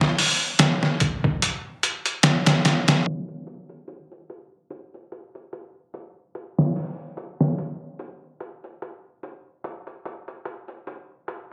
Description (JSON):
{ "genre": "trip hop", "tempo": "73 BPM", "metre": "4/4", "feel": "swing 56% on 16ths", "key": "none", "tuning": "none", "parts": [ { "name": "trip hop sampler-style drum kit", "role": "drums", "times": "0.0-11.5 s", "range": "hi-hat, kick drum, snare drum", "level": "-22 LUFS", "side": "equal", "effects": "overdrive, small room ambience" } ], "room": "moderate plate reverb, RT60 2.2 s", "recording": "recorded on a phone in the room, club reverb, compression, low-pass filter", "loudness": "-22 LUFS", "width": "mono", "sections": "0.0-3.1 A section; 3.1-11.5 B section", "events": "filter sweep 3.1-11.5", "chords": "none" }